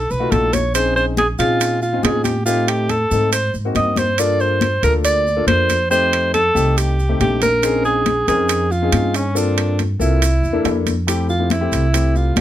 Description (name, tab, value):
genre	Afro-Cuban jazz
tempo	139 BPM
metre	4/4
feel	straight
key	F major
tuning	A4 = 441 Hz
part	clear alto saxophone	melody	0.0-12.4 s	Db4 to Eb5	-18 LUFS	right 1 dB	none
part	upright bass	bass	0.0-12.4 s	A1 to Bb2	-20 LUFS	right 1 dB	none
part	congas	percussion	0.1-12.4 s	none	-24 LUFS	left 5 dB	none
part	maracas	percussion	0.1-12.4 s	none	-30 LUFS	right 5 dB	none
part	warm grand piano	accompaniment	0.2-12.4 s	A3 to Bb4	-22 LUFS	left 4 dB	none
part	timbales	percussion	0.3-12.4 s	none	-24 LUFS	right 10 dB	none
room	light reverb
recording	close, detailed microphones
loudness	-15 LUFS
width	side -12 dB against mid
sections	0.0-11.1 A section; 11.1-12.4 B section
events	alto saxophone solo 11.1-12.4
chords	0.0 B7#11; 0.7 Bbm11; 2.5 Am7b5; 3.3 Ab9; 4.2 Gm9; 5.9 F7; 7.6 Bbm11; 9.4 Gm11; 10.2 C13; 11.1 Fmaj7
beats	0.32 | 0.75 1.18 1.61 2.04 | 2.47 2.90 3.33 3.76 | 4.19 4.62 5.05 5.48 | 5.91 6.34 6.77 7.20 | 7.63 8.06 8.49 8.93 | 9.36 9.79 10.22 10.65 | 11.08 11.51 11.94 12.37